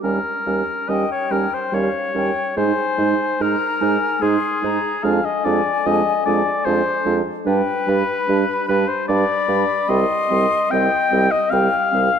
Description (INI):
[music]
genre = classical, slow romantic movement for wind quintet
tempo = 73 BPM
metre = 3/4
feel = rubato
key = unclear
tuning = A4 = 440 Hz
[part]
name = warm oboe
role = second line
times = 0.0-12.2 s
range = Ab4 to G5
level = -20 LUFS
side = left 3 dB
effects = none
[part]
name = mellow clarinet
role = accompaniment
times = 0.0-12.1 s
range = C4 to Eb4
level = -25 LUFS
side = right 9 dB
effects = none
[part]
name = warm French horn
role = accompaniment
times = 0.0-12.1 s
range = G3 to Ab3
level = -26 LUFS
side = right 1 dB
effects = none
[part]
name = mellow bassoon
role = bass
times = 0.0-12.1 s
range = C2 to Ab2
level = -24 LUFS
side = right 2 dB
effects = none
[part]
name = mellow silver concert flute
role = melody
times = 0.9-12.2 s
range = Eb5 to C6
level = -25 LUFS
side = left 8 dB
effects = none
[sound]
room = moderate concert hall reverb, RT60 2.2 s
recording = dark, warm production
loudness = -17 LUFS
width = side -7 dB against mid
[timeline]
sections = 0.0-12.2 A section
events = none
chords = 0.0 Eb7; 2.6 Ab; 5.0 Ddim/F; 7.5 G; 9.9 Cm